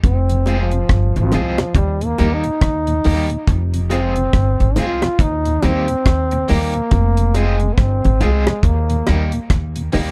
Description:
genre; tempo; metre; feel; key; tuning
roots reggae; 70 BPM; 4/4; swing 60% on 16ths; F minor; A4 = 440 Hz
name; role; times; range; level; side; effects
warm trombone; melody; 0.0-9.5 s; F3 to F4; -24 LUFS; equal; dub echo
upright bass; bass; 0.0-10.1 s; F1 to Eb2; -20 LUFS; equal; none
deep reggae drum kit; drums; 0.0-10.1 s; hi-hat, kick drum, rim click; -20 LUFS; equal; none
mellow tonewheel organ; accompaniment; 0.3-10.0 s; Eb2 to F4; -26 LUFS; equal; chorus vibrato, slow rotary speaker
electric guitar at the edge of break-up; accompaniment; 0.5-10.1 s; G3 to Ab4; -29 LUFS; equal; tremolo, dub echo
bongos; percussion; 0.5-10.1 s; none; -24 LUFS; equal; none
room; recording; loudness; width
little or no reverb; dark, warm production; -17 LUFS; mono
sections
0.0-10.1 A section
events
trombone solo 0.0-10.1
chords
0.0 Fm; 1.8 Eb; 3.5 Fm; 5.2 Eb; 6.9 Fm; 8.6 Eb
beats
| 0.04 0.90 1.76 2.62 | 3.48 4.34 5.20 6.06 | 6.92 7.78 8.64 9.50

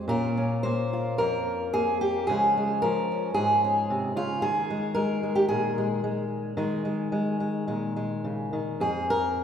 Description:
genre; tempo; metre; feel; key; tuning
folk, solo fingerstyle acoustic guitar; 110 BPM; 4/4; rubato; unclear; A4 = 440 Hz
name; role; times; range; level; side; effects
fingerpicked steel-string acoustic guitar; solo; 0.0-9.4 s; F2 to C5; -24 LUFS; equal; none
room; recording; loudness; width
wet scoring stage reverb, RT60 1.9 s; recorded in a church or concert hall; -24 LUFS; side -8 dB against mid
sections
0.0-8.8 A section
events
none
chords
0.1 Bbm; 2.3 Db; 4.4 Ebsus4; 8.8 Fm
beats
| 0.09 0.64 1.19 1.74 | 2.28 2.83 3.37 3.90 | 4.44 4.97 5.50 6.04 | 6.58 7.12 7.67 8.24 | 8.81 9.36

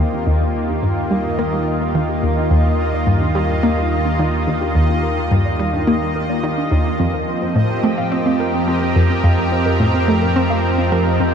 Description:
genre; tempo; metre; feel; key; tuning
ambient, sequencer-driven space music; 107 BPM; 4/4; straight; Eb major; A4 = 440 Hz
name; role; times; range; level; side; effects
lush unison pad; sustained chords; 0.0-11.3 s; Eb3 to Bb4; -20 LUFS; equal; chorus
warbly dusty pluck; arpeggios; 0.0-11.3 s; C4 to F5; -26 LUFS; right 3 dB; chorus, auto-pan, analog delay
analog pluck; riff; 0.0-11.3 s; Eb2 to C4; -19 LUFS; equal; chorus, analog delay
analog drone; bass; 0.1-11.3 s; Eb2 to F2; -23 LUFS; equal; chorus
bubbling stepped-filter texture; texture; 0.0-11.3 s; Eb5; -27 LUFS; right 1 dB; chorus, built-in reverb
room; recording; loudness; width
wet huge ambient reverb, RT60 7.5 s; dark, warm production; -15 LUFS; side -7 dB against mid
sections
0.0-11.3 A section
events
fade-in on synth arpeggio sound 0.0-11.3; filter sweep on synth arpeggio sound 0.0-11.3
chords
0.0 Ebmaj7; 7.0 Fsus4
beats
| 0.27 0.83 1.39 1.95 | 2.51 3.07 3.63 4.19 | 4.75 5.31 5.87 6.43 | 7.00 7.56 8.12 8.68 | 9.24 9.80 10.36 10.92

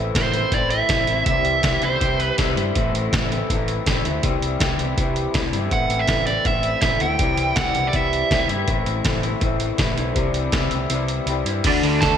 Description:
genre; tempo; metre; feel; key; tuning
indie rock; 162 BPM; 4/4; straight; A dorian; A4 = 440 Hz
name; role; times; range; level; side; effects
electric guitar through a small old amp; riff; 0.0-12.2 s; A2 to F#4; -24 LUFS; left 4 dB; lush chorus
picked electric bass; bass; 0.0-12.2 s; A1 to G2; -26 LUFS; equal; none
lo-fi sampler-style drum kit; drums; 0.1-12.1 s; crash cymbal, hi-hat, kick drum, snare drum; -23 LUFS; equal; gated reverb
dark smooth lead guitar; melody; 0.2-2.3, 5.7-8.5, 12.0-12.2 s; C5 to A5; -22 LUFS; right 4 dB; overdrive, ping-pong delay
twelve-string electric guitar; riff; 11.7-12.2 s; D3 to A3; -22 LUFS; right 8 dB; lush chorus, ping-pong delay
room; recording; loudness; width
moderate plate reverb, RT60 2.0 s; bright 1980s-style digital production; -18 LUFS; side -8 dB against mid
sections
0.0-11.7 A section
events
kick and snare drop out 10.9-11.7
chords
0.0 Am; 1.3 C; 2.8 Am; 4.2 C; 5.7 Am; 7.2 C; 8.7 Am; 10.2 C; 11.7 D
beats
0.15 0.53 0.90 | 1.27 1.64 2.01 2.38 | 2.75 3.12 3.49 3.86 | 4.23 4.60 4.97 5.34 | 5.71 6.08 6.45 6.82 | 7.19 7.56 7.93 8.30 | 8.67 9.04 9.42 9.79 | 10.16 10.53 10.91 11.28 | 11.65 12.03

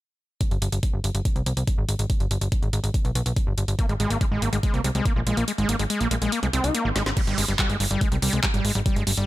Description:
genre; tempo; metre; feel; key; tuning
psychedelic trance; 142 BPM; 4/4; straight; unclear; A4 = 440 Hz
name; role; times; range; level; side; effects
drum and bass drum kit; drums; 0.4-9.3 s; crash cymbal, handclaps, hi-hat, snare drum; -29 LUFS; right 1 dB; overdrive, small room ambience
electronic kick drum; drums; 0.4-8.9 s; none; -24 LUFS; equal; overdrive, small room ambience
plucky analog bass; bass; 0.5-9.2 s; G1 to C2; -25 LUFS; equal; none
overdriven acid bass; riff; 3.8-9.3 s; G3 to Eb4; -26 LUFS; equal; distortion, auto-pan, sidechain pumping, digital delay
room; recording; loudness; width
little or no reverb; none; -21 LUFS; side -16 dB against mid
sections
0.4-7.2 A section; 7.2-9.3 B section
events
kick drops out 5.5-7.2; drum fill 7.0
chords
0.4 N.C.; 3.8 Ab5; 7.2 Gsus4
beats
| 0.41 0.83 1.25 1.68 | 2.10 2.52 2.94 3.37 | 3.79 4.21 4.63 5.05 | 5.48 5.90 6.32 6.75 | 7.17 7.59 8.01 8.44 | 8.86

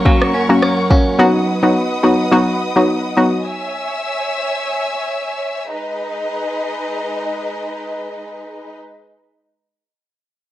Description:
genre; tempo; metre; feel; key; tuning
dancehall; 106 BPM; 4/4; swing 56% on 16ths; G# minor; A4 = 441 Hz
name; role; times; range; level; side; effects
warm symphonic string section; sustained chords; 0.0-8.7 s; G#3 to E6; -21 LUFS; equal; sidechain pumping
clean electric guitar; arpeggios; 0.0-1.8 s; F#2 to C#4; -20 LUFS; right 2 dB; phaser, tape echo
downlifter; sound effects; 0.0-1.2 s; none; barely audible; none; none
hollow square pluck; accompaniment; 0.1-3.4 s; F#3 to F#4; -14 LUFS; left 1 dB; chorus, sidechain pumping
deep house drum kit; drums; 0.1-1.1 s; kick drum, rim click; -14 LUFS; equal; overdrive
room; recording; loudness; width
light reverb; dry, gritty hardware recording, transformer saturation, cassette tape; -15 LUFS; side -14 dB against mid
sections
0.0-5.7 A section; 5.7-8.0 B section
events
none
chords
0.0 F#; 1.2 B; 3.5 C#m; 5.7 G#m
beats
0.06 0.62 | 1.19 1.76 2.32 2.89 | 3.45 4.02 4.59 5.15 | 5.72 6.28 6.85 7.42

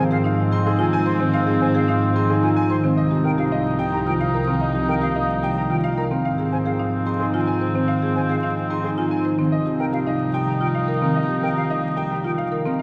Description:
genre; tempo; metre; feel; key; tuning
classical, minimalist pattern music; 110 BPM; 3/4; straight; unclear; A4 = 440 Hz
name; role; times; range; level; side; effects
clear baby grand piano; melody; 0.0-12.8 s; G4 to C6; -31 LUFS; equal; none
warm oboe; second line; 0.0-12.8 s; C4 to Eb4; -30 LUFS; equal; none
concert harp; accompaniment; 0.0-12.8 s; Eb3 to Eb4; -26 LUFS; equal; none
concert flute; arpeggios; 0.0-12.3 s; F5 to C6; -34 LUFS; equal; none
rich chamber double bass section; bass; 0.0-12.8 s; C2 to Ab2; -28 LUFS; equal; none
marimba with medium mallets; arpeggios; 0.1-12.8 s; C4 to C5; -28 LUFS; equal; none
room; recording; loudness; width
wet cathedral reverb, RT60 5.9 s; recorded in a church or concert hall, vinyl crackle; -21 LUFS; mono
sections
0.0-12.8 A section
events
none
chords
0.0 Ab; 3.0 Cm7; 6.2 Ab; 9.5 Cm7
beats
0.24 0.79 | 1.34 1.88 2.43 | 2.97 3.52 4.06 | 4.61 5.15 5.70 | 6.25 6.79 7.34 | 7.88 8.43 8.97 | 9.52 10.06 10.61 | 11.15 11.70 12.24 | 12.79

